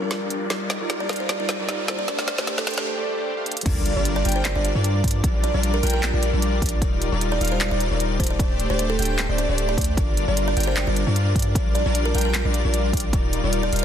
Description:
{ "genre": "future bass", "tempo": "152 BPM", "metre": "4/4", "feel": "swing 54% on 16ths, half-time", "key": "G minor", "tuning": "A4 = 440 Hz", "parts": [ { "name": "big bright polysynth", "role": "riff", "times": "0.0-13.8 s", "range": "G3 to G5", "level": "-26 LUFS", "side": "left 2 dB", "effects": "sidechain pumping" }, { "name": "long sustained 808-style bass", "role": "bass", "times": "0.0-13.8 s", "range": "D1 to G2", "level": "-24 LUFS", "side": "equal", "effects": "sidechain pumping, high-pass filter" }, { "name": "riser, swell and sub drop", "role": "sound effects", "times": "0.0-5.2 s", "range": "none", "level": "-34 LUFS", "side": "right 1 dB", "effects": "none" }, { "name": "trap drum kit", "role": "drums", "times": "0.1-13.8 s", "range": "crash cymbal, handclaps, hi-hat, snare drum", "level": "-27 LUFS", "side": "equal", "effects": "soft clipping on snare" }, { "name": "buzzing kalimba", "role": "melody", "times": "1.0-13.8 s", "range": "A4 to D5", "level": "-29 LUFS", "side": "right 2 dB", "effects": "sidechain pumping, low-pass filter, ping-pong delay" }, { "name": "airy dreamy lead", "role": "arpeggios", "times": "3.7-13.8 s", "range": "D5 to G5", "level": "-31 LUFS", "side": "equal", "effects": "chorus, sidechain pumping, digital delay" }, { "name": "electronic kick drum", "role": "drums", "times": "3.7-13.2 s", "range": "none", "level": "-22 LUFS", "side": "equal", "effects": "none" } ], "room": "light reverb", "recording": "dense, heavily limited modern master, high-pass filter", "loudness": "-20 LUFS", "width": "side -9 dB against mid", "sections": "0.0-3.7 A section; 3.7-13.8 B section", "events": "build-up 0.0-3.7; drum fill 0.0-2.9, 3.5; riser 0.0-2.9; filter sweep on analog polysynth 0.0-3.7; swell 2.9-3.7; drop 3.7-13.8; impact 3.7-5.2", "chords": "0.0 Bb6; 0.5 Ebmaj9; 2.1 D7sus4; 3.7 Gm7; 5.2 Bb6; 6.8 Ebmaj9; 8.4 D7sus4; 10.0 Gm7; 11.6 Bb6; 13.1 Ebmaj9", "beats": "0.11 | 0.50 0.90 1.29 1.69 | 2.08 2.48 2.87 3.26 | 3.66 4.05 4.45 4.84 | 5.24 5.63 6.03 6.42 | 6.82 7.21 7.61 8.00 | 8.40 8.79 9.19 9.58 | 9.97 10.37 10.76 11.16 | 11.55 11.95 12.34 12.74 | 13.13 13.53" }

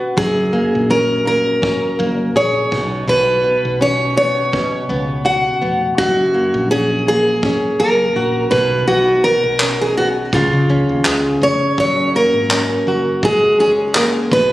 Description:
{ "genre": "acoustic pop", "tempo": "83 BPM", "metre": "4/4", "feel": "swing 55% on 16ths", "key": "F# major", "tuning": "A4 = 444 Hz", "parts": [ { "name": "flamenco guitar", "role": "accompaniment", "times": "0.0-14.5 s", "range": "F#2 to G#4", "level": "-19 LUFS", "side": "left 1 dB", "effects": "none" }, { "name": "fingerpicked steel-string acoustic guitar", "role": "melody", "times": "0.2-14.5 s", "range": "E#4 to F#5", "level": "-15 LUFS", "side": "equal", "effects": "ping-pong delay" }, { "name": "woody fretless electric bass", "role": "bass", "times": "0.2-14.5 s", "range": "E#1 to C#3", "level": "-25 LUFS", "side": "equal", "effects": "none" }, { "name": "vintage brush drum kit", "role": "drums", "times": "0.2-14.5 s", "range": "handclaps, kick drum", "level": "-20 LUFS", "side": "equal", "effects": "none" } ], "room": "moderate small room ambience, RT60 0.5 s", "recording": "recorded on a phone in the room, studio reverb", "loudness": "-13 LUFS", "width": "side -16 dB against mid", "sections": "0.0-11.8 A section; 11.8-14.5 B section", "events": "none", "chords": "0.2 F#add9; 2.7 Bsus2; 6.0 F#add9; 8.5 Bsus2; 10.3 C#; 11.8 F#add9", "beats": "| 0.17 0.90 1.63 2.35 | 3.08 3.81 4.53 5.26 | 5.99 6.71 7.44 8.16 | 8.88 9.61 10.33 11.06 | 11.78 12.51 13.23 13.95" }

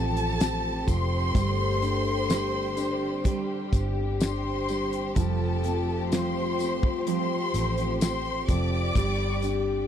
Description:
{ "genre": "pop ballad", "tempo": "63 BPM", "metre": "4/4", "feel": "straight", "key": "F major", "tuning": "A4 = 440 Hz", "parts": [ { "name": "rich studio violin section", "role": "melody", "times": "0.0-9.9 s", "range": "A4 to D6", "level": "-31 LUFS", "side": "left 1 dB", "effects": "slapback echo" }, { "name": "dark French horn section", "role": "second line", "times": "0.0-9.9 s", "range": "F3 to A4", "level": "-34 LUFS", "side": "left 11 dB", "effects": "none" }, { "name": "warm concert grand piano", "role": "accompaniment", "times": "0.0-9.9 s", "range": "F3 to D4", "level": "-32 LUFS", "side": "right 1 dB", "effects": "none" }, { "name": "warm studio string section", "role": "sustained chords", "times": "0.0-9.9 s", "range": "D3 to G4", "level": "-37 LUFS", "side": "left 3 dB", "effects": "none" }, { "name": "picked steel-string acoustic guitar", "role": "arpeggios", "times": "0.0-9.9 s", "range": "F3 to C5", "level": "-36 LUFS", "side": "right 17 dB", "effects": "none" }, { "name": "vintage muted fingered electric bass", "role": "bass", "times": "0.0-9.9 s", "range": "F1 to A1", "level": "-30 LUFS", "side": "equal", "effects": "none" }, { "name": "damped 70s drum kit", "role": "drums", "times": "0.2-9.6 s", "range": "hi-hat, kick drum, snare drum", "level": "-25 LUFS", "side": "equal", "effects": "none" }, { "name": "tambourine", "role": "percussion", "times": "0.4-9.7 s", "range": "none", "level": "-42 LUFS", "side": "left 19 dB", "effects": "none" } ], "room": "little or no reverb", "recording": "dry, close 1970s-style studio recording", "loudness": "-24 LUFS", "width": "side -9 dB against mid", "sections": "0.0-9.9 A section", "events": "none", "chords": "0.0 Fadd9; 1.3 Csus2/G; 5.2 Fadd9; 9.0 Csus2/G", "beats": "0.40 | 1.35 2.30 3.25 4.21 | 5.16 6.12 7.07 8.01 | 8.95" }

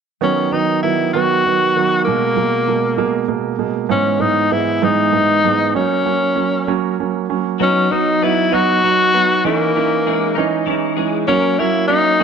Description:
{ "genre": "pop", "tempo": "65 BPM (dotted quarters)", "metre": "6/8", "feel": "straight", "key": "B major", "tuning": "A4 = 440 Hz", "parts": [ { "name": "clear tenor saxophone", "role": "melody", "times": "0.2-12.2 s", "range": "A#3 to F#4", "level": "-16 LUFS", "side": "left 3 dB", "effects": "none" }, { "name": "warm grand piano", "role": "accompaniment", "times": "0.2-12.2 s", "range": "G#2 to D#4", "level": "-18 LUFS", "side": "right 10 dB", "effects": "none" }, { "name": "twelve-string electric guitar", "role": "arpeggios", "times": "7.6-12.2 s", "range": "E3 to F#4", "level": "-22 LUFS", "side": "left 13 dB", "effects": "ensemble chorus" } ], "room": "moderate spring reverb, RT60 2.0 s, small room ambience", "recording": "1960s-style stereo with parts hard left and right", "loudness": "-14 LUFS", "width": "side -6 dB against mid", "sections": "0.2-12.2 A section", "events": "none", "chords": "0.2 B; 2.1 G#madd9; 3.9 E/G#; 5.7 F#; 7.6 B; 9.4 C#madd9; 11.3 F#", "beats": "| 0.22 1.15 | 2.07 2.99 | 3.90 4.82 | 5.74 6.67 | 7.60 8.53 | 9.45 10.37 | 11.28 12.20" }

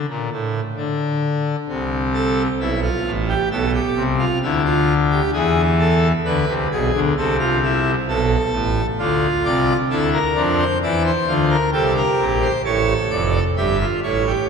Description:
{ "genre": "classical, baroque-style 3-part fugue for pipe organ", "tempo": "66 BPM", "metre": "4/4", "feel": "straight", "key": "unclear", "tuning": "A4 = 440 Hz", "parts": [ { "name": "pipe organ, full organ", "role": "solo", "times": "0.0-14.5 s", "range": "F1 to E5", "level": "-17 LUFS", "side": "equal", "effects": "none" } ], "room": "wet church reverb, RT60 2.8 s", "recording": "none", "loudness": "-17 LUFS", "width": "side -6 dB against mid", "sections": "0.0-14.5 A section", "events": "none", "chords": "0.0 N.C.; 1.7 Am/C; 3.5 Bm7b5; 5.3 E7; 7.2 Am/C; 9.0 Dm; 10.8 Em7b5; 12.6 A7", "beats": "0.78 | 1.69 2.61 3.52 4.42 | 5.34 6.25 7.16 8.07 | 8.98 9.89 10.81 11.73 | 12.65 13.56" }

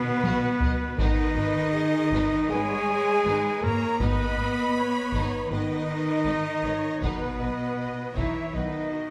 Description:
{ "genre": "cinematic, epic orchestral film score", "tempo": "80 BPM", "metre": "4/4", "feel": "straight", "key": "G# minor", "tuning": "A4 = 438 Hz", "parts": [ { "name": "bright silver concert flute", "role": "second line", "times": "0.0-9.1 s", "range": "B4 to B5", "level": "-36 LUFS", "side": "equal", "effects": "none" }, { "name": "rich studio violin section", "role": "second line", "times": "0.0-9.1 s", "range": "B4 to B5", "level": "-40 LUFS", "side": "equal", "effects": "none" }, { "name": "clear symphonic viola section", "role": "accompaniment", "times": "0.0-9.1 s", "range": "F#4 to D#5", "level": "-40 LUFS", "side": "equal", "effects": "none" }, { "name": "dark French horn section", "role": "sustained chords", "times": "0.0-9.1 s", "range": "B3 to B4", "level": "-31 LUFS", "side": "equal", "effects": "none" }, { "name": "warm trombone section", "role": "sustained chords", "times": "0.0-8.8 s", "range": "D#3 to B3", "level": "-43 LUFS", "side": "equal", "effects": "none" }, { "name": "clear trumpet", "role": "stabs", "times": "0.0-9.1 s", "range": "B3 to B4", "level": "-34 LUFS", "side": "equal", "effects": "none" }, { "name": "bright studio cello section", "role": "bass", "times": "0.0-9.1 s", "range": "B2 to B3", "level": "-33 LUFS", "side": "equal", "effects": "none" }, { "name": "clear symphonic violin section", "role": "melody", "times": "0.2-8.6 s", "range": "D#4 to D#5", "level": "-42 LUFS", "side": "equal", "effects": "none" }, { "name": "rich symphonic double bass section", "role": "bass", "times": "0.2-8.6 s", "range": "G#1 to B1", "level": "-36 LUFS", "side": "equal", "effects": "none" }, { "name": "taiko ensemble", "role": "drums", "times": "0.2-8.9 s", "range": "none", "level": "-33 LUFS", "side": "equal", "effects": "none" } ], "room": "wet concert hall reverb, RT60 2.4 s", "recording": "none", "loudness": "-26 LUFS", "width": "mono", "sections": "0.0-9.1 A section", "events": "drum fill 0.0-1.0", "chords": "0.0 B; 1.0 G#m; 7.0 B", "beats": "0.24 | 0.99 1.75 2.51 3.26 | 4.01 4.76 5.51 6.26 | 7.02 7.78 8.54" }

